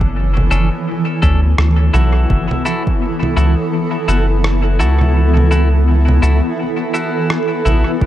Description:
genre	ambient dub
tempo	84 BPM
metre	4/4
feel	swing 60% on 16ths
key	unclear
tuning	A4 = 441 Hz
part	granular cloud pad	sustained chords	0.0-8.1 s	E3 to C#5	-18 LUFS	right 1 dB	built-in reverb
part	soft dub sub bass	bass	0.0-8.1 s	F#1 to D2	-12 LUFS	equal	none
part	electronic kick drum	drums	0.0-3.0, 8.0-8.1 s	none	-18 LUFS	equal	small room ambience
part	electronic congas, shaker and rim click	drums	0.4-7.8 s	none	-23 LUFS	right 1 dB	small room ambience, dub echo
part	clean electric guitar	stabs	0.5-7.9 s	C#4 to A4	-22 LUFS	left 2 dB	dub echo
room	light reverb, digital ambience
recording	none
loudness	-12 LUFS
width	side -13 dB against mid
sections	0.0-8.1 A section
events	kick drops out 5.2-8.0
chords	0.0 Bm9; 2.3 F#m7

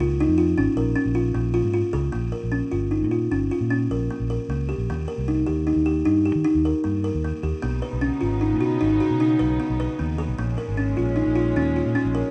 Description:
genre	contemporary instrumental, chamber music in an uneven meter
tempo	153 BPM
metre	7/4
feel	straight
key	Bb dorian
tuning	A4 = 440 Hz
part	buzzing kalimba	arpeggios	0.0-12.3 s	Bb3 to B4	-25 LUFS	equal	none
part	fingered electric bass	bass	0.0-12.2 s	G1 to Eb3	-28 LUFS	equal	none
part	warm studio string section	sustained chords	7.6-12.3 s	Bb2 to D#4	-33 LUFS	equal	none
room	moderate recital hall reverb, RT60 1.6 s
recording	none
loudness	-23 LUFS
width	mono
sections	0.0-2.1 A section; 2.1-12.3 B section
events	none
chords	0.0 Bbm; 4.9 Eb; 7.6 Badd9; 10.4 Bbm7

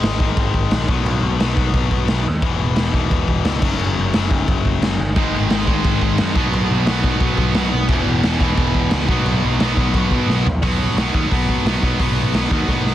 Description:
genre	punk rock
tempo	176 BPM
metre	4/4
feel	straight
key	B major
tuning	A4 = 439 Hz
part	distorted electric guitar	riff	0.0-12.9 s	E2 to B3	-22 LUFS	left 7 dB	overdrive
part	growling picked electric bass	bass	0.0-12.9 s	E1 to B2	-22 LUFS	equal	overdrive
part	raw garage drum kit	drums	0.0-12.9 s	crash cymbal, hi-hat, kick drum, snare drum, toms	-19 LUFS	equal	none
part	distorted electric guitar	riff	5.2-12.9 s	E2 to B3	-22 LUFS	right 10 dB	overdrive
room	small room reverb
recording	dense, heavily limited modern master, vinyl crackle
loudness	-15 LUFS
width	side -12 dB against mid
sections	0.0-10.6 A section; 10.6-12.9 B section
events	drum fill 10.3-10.6, 12.7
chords	0.0 G#5; 0.9 B5; 2.4 E5; 3.6 F#5; 5.2 G#5; 6.4 B5; 7.9 E5; 9.1 B5

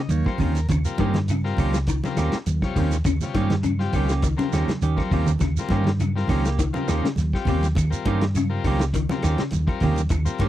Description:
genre	afrobeat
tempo	102 BPM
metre	4/4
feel	swing 54% on 16ths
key	Eb mixolydian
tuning	A4 = 439 Hz
part	combo organ	accompaniment	0.0-10.5 s	C3 to Eb5	-30 LUFS	left 8 dB	none
part	semi-hollow electric guitar	arpeggios	0.0-10.5 s	C3 to Eb3	-28 LUFS	left 4 dB	ensemble chorus
part	clean electric guitar	stabs	0.1-10.5 s	Eb3 to G4	-27 LUFS	right 8 dB	none
part	hollow-body short-scale fingered electric bass	bass	0.1-10.5 s	Db2 to G2	-23 LUFS	equal	none
part	warm soul drum kit	drums	0.1-10.5 s	hi-hat, kick drum, snare drum	-26 LUFS	equal	none
part	congas	percussion	0.1-10.5 s	none	-30 LUFS	right 3 dB	none
part	shekere	percussion	0.1-10.4 s	none	-33 LUFS	right 4 dB	none
part	claves	percussion	0.3-10.3 s	none	-43 LUFS	left 2 dB	none
room	little or no reverb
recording	dry, close 1970s-style studio recording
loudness	-20 LUFS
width	side -13 dB against mid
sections	0.0-10.5 A section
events	transistor combo organ fill 0.0-0.7; drum fill 4.7-5.4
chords	0.0 Eb7

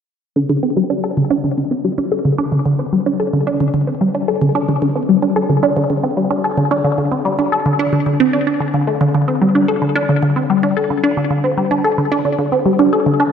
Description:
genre	ambient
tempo	111 BPM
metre	4/4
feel	straight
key	unclear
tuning	A4 = 436 Hz
part	resonant blip pluck	solo	0.4-13.3 s	D3 to A4	-14 LUFS	equal	chorus, phaser, ping-pong delay
room	wet plate reverb, RT60 2.8 s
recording	dreamy mix soaked in reverb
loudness	-14 LUFS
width	side -7 dB against mid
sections	0.4-13.3 A section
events	none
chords	none

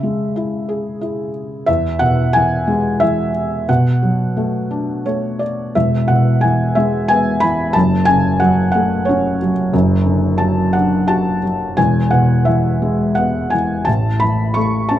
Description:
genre	classical, lyrical solo piano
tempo	89 BPM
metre	3/4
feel	rubato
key	unclear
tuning	A4 = 440 Hz
part	felt-muted upright piano	solo	0.0-15.0 s	E1 to C#6	-14 LUFS	equal	none
room	light reverb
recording	dark, warm production, nothing above 10.5 kHz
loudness	-14 LUFS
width	side -12 dB against mid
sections	0.0-5.8 A section; 5.8-15.0 B section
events	none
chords	0.0 C#m; 1.7 E; 3.7 Bm7; 5.8 E; 7.8 F#m; 9.7 D/F#; 11.8 E; 13.9 A

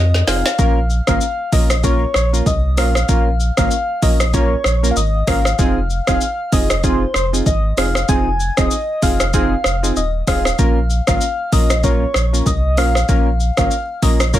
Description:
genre	afrobeats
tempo	96 BPM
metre	4/4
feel	swing 58% on 16ths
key	unclear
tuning	A4 = 441 Hz
part	soft struck synth lead	melody	0.0-14.4 s	C5 to Ab5	-22 LUFS	left 2 dB	chorus, tape echo
part	warm sub bass	bass	0.0-14.4 s	Eb1 to F2	-18 LUFS	equal	none
part	afro-pop drum kit	drums	0.1-14.4 s	hi-hat, kick drum, rim click, shaker, snare drum	-18 LUFS	equal	overdrive
part	warm analog keys	accompaniment	0.3-14.4 s	Bb3 to Bb4	-21 LUFS	right 1 dB	chorus
room	light reverb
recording	none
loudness	-14 LUFS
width	side -13 dB against mid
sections	0.6-14.4 A section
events	drum fill 0.0-0.6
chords	0.0 Fm7; 0.6 Bbm; 5.6 Fm7; 10.6 Bbm

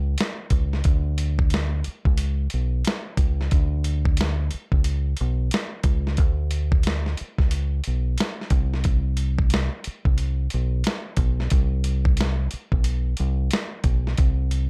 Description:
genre	R&B, neo-soul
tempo	90 BPM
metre	4/4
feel	swing 61% on 16ths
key	unclear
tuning	A4 = 440 Hz
part	deep dub fingered electric bass	bass	0.0-14.7 s	B1 to D2	-25 LUFS	equal	none
part	dusty soul sampler-style drum kit	drums	0.2-14.7 s	hi-hat, kick drum, snare drum	-25 LUFS	equal	none
room	little or no reverb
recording	none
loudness	-23 LUFS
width	mono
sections	0.0-14.7 A section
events	none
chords	none

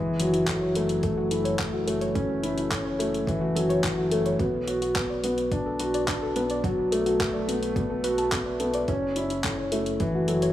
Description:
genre	piano and strings electronica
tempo	107 BPM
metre	4/4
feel	straight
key	F# minor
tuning	A4 = 439 Hz
part	soft round pluck	arpeggios	0.0-10.5 s	E4 to A5	-32 LUFS	left 1 dB	chorus, sidechain pumping, tape echo
part	felt-muted upright piano	riff	0.0-10.5 s	E3 to F#4	-25 LUFS	left 1 dB	tape echo
part	round analog bass	bass	0.0-10.5 s	F#1 to B1	-37 LUFS	equal	sidechain pumping
part	deep house drum kit	drums	0.2-10.5 s	handclaps, hi-hat	-33 LUFS	equal	none
part	electronic kick drum	drums	0.5-10.1 s	none	-32 LUFS	right 1 dB	none
room	light reverb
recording	small room ambience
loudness	-23 LUFS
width	side -13 dB against mid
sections	0.0-10.5 A section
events	none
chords	0.0 F#m7; 4.4 Bm7; 8.9 F#m7

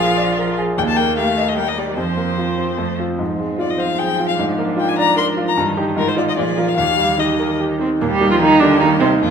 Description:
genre	quick classical-period movement for piano quartet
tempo	150 BPM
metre	3/4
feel	straight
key	Eb major from 3.2 s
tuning	A4 = 440 Hz
part	rich violin	melody	0.0-9.3 s	F4 to C6	-20 LUFS	left 6 dB	none
part	rich cello	second line	0.0-9.3 s	Bb2 to Bb3	-23 LUFS	right 6 dB	none
part	bright concert grand piano	accompaniment	0.0-9.3 s	Bb1 to Eb5	-19 LUFS	equal	none
part	rich viola	accompaniment	0.0-9.3 s	A3 to Ab4	-21 LUFS	right 3 dB	none
room	wet recital hall reverb, RT60 1.6 s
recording	minimal, uncompressed stereo recording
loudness	-15 LUFS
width	side -7 dB against mid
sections	0.0-8.0 A section; 8.0-9.3 B section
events	none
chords	0.0 Bb7; 0.8 Eb; 2.0 Fsus4; 2.8 F; 3.2 Fm/Ab; 4.4 Bb7/Ab; 5.6 Eb/G; 6.0 Fm7/Ab; 6.4 Bb7; 6.8 Eb

